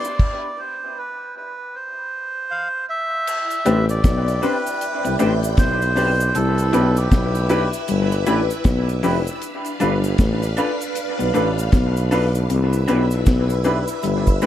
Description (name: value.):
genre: lovers rock reggae.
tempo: 78 BPM.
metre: 4/4.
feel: swing 61% on 16ths.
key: C major.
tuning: A4 = 440 Hz.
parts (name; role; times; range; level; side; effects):
melodica; melody; 0.0-7.7 s; G4 to F5; -24 LUFS; right 1 dB; tape echo.
phased string machine; second line; 0.0-14.5 s; D4 to C6; -28 LUFS; equal; ensemble chorus, phaser.
electric guitar through a small old amp; stabs; 0.0-14.5 s; C4 to C5; -28 LUFS; right 4 dB; phaser, dub echo.
deep reggae drum kit; drums; 0.0-14.5 s; crash cymbal, hi-hat, kick drum, snare drum; -18 LUFS; equal; none.
cabasa; percussion; 0.0-14.5 s; none; -38 LUFS; right 4 dB; none.
dark baby grand piano; accompaniment; 3.7-14.5 s; C4 to B4; -26 LUFS; left 3 dB; dub echo.
electric guitar at the edge of break-up; riff; 3.7-14.5 s; F3 to C4; -25 LUFS; left 5 dB; none.
warm tuba; bass; 3.7-14.5 s; F1 to C2; -20 LUFS; equal; none.
room: light reverb.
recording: dark, warm production.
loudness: -17 LUFS.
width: side -12 dB against mid.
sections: 0.0-3.3 A section; 3.3-14.5 B section.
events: none.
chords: 0.2 N.C.; 3.3 Am11; 6.3 Cmaj7; 9.4 G7; 12.5 Cmaj7.